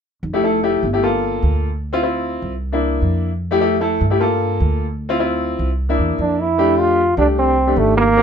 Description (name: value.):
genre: Afro-Cuban jazz.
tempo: 151 BPM.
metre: 4/4.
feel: straight.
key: F major.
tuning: A4 = 440 Hz.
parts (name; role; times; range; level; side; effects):
upright bass; bass; 0.2-8.2 s; F1 to G2; -21 LUFS; right 1 dB; none.
clear concert grand piano; accompaniment; 0.3-8.2 s; A3 to A4; -18 LUFS; left 2 dB; none.
bright trombone; melody; 6.2-8.2 s; A3 to F4; -15 LUFS; right 2 dB; none.
room: light reverb.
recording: minimal, uncompressed stereo recording.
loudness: -15 LUFS.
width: side -7 dB against mid.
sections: 0.2-6.6 A section; 6.6-8.2 B section.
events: none.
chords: 0.2 Fmaj7; 1.0 Gm7; 1.8 Dm7; 2.6 C7; 3.4 Fmaj7; 4.2 Gm7; 5.0 Dm7; 5.8 C7; 6.6 F6.